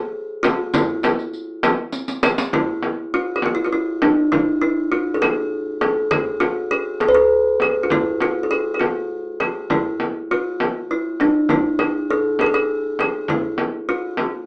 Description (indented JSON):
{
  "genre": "Arabic maqam ensemble",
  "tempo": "67 BPM (dotted quarters)",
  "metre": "6/8",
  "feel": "straight",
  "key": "E maqam huzam",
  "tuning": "A4 = 440 Hz",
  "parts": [
    { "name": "kalimba", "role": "melody", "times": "0.0-14.5 s", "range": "D4+50c to B4+40c", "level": "-18 LUFS", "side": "equal", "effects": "none" },
    { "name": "frame drum", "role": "percussion", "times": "0.4-14.3 s", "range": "none", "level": "-22 LUFS", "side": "equal", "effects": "none" },
    { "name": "riq", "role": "percussion", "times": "0.4-2.5 s", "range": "none", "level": "-26 LUFS", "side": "equal", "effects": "none" }
  ],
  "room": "wet studio ambience, RT60 0.5 s",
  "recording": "heard from further back in the room, AM radio sound",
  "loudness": "-17 LUFS",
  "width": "side -28 dB against mid",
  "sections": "0.0-2.5 A section; 2.5-14.5 B section",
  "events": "drum fill 1.9-2.5",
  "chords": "none"
}